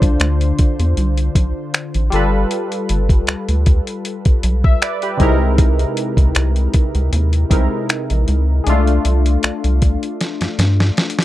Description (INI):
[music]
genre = contemporary R&B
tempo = 78 BPM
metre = 4/4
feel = swing 54% on 16ths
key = unclear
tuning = A4 = 440 Hz
[part]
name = warm analog keys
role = accompaniment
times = 0.0-11.2 s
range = C3 to E5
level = -20 LUFS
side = left 1 dB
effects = chorus
[part]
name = rubbery square bass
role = bass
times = 0.0-10.9 s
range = G1 to G2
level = -16 LUFS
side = equal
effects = none
[part]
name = dusty soul sampler-style drum kit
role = drums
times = 0.0-11.2 s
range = finger snaps, hi-hat, kick drum, snare drum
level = -16 LUFS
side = equal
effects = none
[sound]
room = little or no reverb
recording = dark, warm production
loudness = -14 LUFS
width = side -15 dB against mid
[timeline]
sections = 0.0-11.2 A section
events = drum fill 10.2-11.2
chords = 0.0 Dm7; 2.1 G9; 5.2 C7alt; 8.7 F69/C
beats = 0.20 0.97 1.74 | 2.51 3.28 4.05 4.82 | 5.59 6.36 7.12 7.89 | 8.66 9.43 10.20 10.97